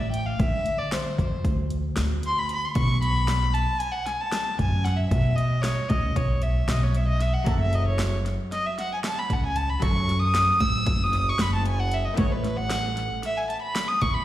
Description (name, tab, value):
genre	progressive instrumental, band music in an uneven meter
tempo	229 BPM (eighths)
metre	9/8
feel	straight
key	F# dorian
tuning	A4 = 440 Hz
part	warm violin	melody	0.0-14.2 s	B4 to E6	-27 LUFS	equal	slapback echo
part	upright bass	bass	0.0-14.2 s	F#1 to D3	-24 LUFS	equal	none
part	deep house drum kit	drums	0.1-14.1 s	hi-hat, kick drum, snare drum	-29 LUFS	equal	none
part	archtop guitar, miked and amplified	accompaniment	7.4-14.2 s	F#3 to E5	-37 LUFS	left 2 dB	double-tracked left and right, slapback echo
room	light reverb, small room ambience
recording	live gig heard through the venue's PA, recital hall reverb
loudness	-22 LUFS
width	side -14 dB against mid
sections	0.0-14.2 A section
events	violin solo 0.0-14.2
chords	0.0 D7(no3); 2.8 Bsus2; 7.5 F#m7; 12.2 Aadd9